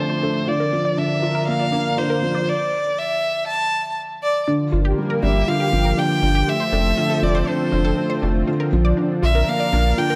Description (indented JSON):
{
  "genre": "piano and strings electronica",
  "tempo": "120 BPM",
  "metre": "4/4",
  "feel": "straight",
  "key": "unclear",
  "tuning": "A4 = 440 Hz",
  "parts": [
    { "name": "warm violin", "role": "melody", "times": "0.0-10.2 s", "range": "C5 to A5", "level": "-24 LUFS", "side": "equal", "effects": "low-pass filter, delay" },
    { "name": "lush unison pad", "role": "sustained chords", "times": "0.0-10.2 s", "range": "F3 to D5", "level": "-30 LUFS", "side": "equal", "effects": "chorus" },
    { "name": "felt-muted upright piano", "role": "riff", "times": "0.0-10.2 s", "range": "D3 to F4", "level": "-25 LUFS", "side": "equal", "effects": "none" },
    { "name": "unison pluck", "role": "arpeggios", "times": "0.1-10.2 s", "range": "D4 to D5", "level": "-30 LUFS", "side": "equal", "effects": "delay" },
    { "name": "warm sub bass", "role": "bass", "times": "4.7-9.9 s", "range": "F1 to Bb1", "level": "-22 LUFS", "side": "equal", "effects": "none" }
  ],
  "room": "moderate recital hall reverb, RT60 1.6 s, small room ambience",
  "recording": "none",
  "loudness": "-20 LUFS",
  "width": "mono",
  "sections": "0.0-4.5 A section; 4.5-10.2 B section",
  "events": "build-up 0.0-4.5; drop 4.5-10.2",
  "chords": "0.5 Bb; 2.5 N.C.; 4.5 Gm7; 6.5 F6; 8.5 Bb",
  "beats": "| 0.48 0.98 1.48 1.98 | 2.48 2.98 3.48 3.98 | 4.48 4.98 5.48 5.98 | 6.48 6.98 7.48 7.98 | 8.48 8.98 9.48 9.98"
}